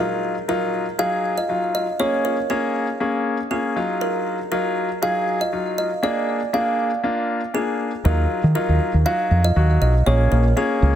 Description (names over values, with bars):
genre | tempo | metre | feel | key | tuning
pop | 119 BPM | 4/4 | straight | Eb minor | A4 = 439 Hz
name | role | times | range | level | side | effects
kalimba | melody | 0.0-11.0 s | Ab4 to F5 | -24 LUFS | right 2 dB | digital delay
clear concert grand piano | accompaniment | 0.0-10.9 s | Gb3 to Ab4 | -23 LUFS | left 3 dB | none
fingered electric bass | bass | 8.1-11.0 s | Bb1 to Eb3 | -16 LUFS | equal | none
room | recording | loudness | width
light reverb, small room ambience | none | -18 LUFS | side -10 dB against mid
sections
0.0-11.0 A section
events
none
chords
0.0 Ebmadd9; 2.0 Bbm7; 3.8 Ebmadd9; 6.0 Bb7; 8.1 Ebmadd9; 10.1 Bbm7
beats
0.49 0.99 1.50 | 2.00 2.50 3.01 3.51 | 4.02 4.52 5.03 5.53 | 6.03 6.54 7.04 7.55 | 8.05 8.55 9.06 9.56 | 10.07 10.57